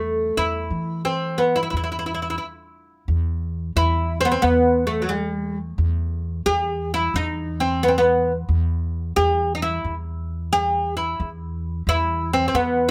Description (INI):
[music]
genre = arabic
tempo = 89 BPM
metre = 4/4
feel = straight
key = E maqam suznak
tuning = A4 = 439 Hz
[part]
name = oud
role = melody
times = 0.0-12.9 s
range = F#3 to G#4-50c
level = -22 LUFS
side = equal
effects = none
[part]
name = upright bass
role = bass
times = 0.0-12.9 s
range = E2 to E3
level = -27 LUFS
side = equal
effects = none
[sound]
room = little or no reverb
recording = none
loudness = -22 LUFS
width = mono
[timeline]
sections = 0.0-3.1 A section; 3.1-12.9 B section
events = stop 2.4-3.1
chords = none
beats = | 0.37 1.05 1.72 2.40 | 3.08 3.75 4.43 5.11 | 5.78 6.46 7.14 7.82 | 8.49 9.17 9.84 10.52 | 11.20 11.87 12.55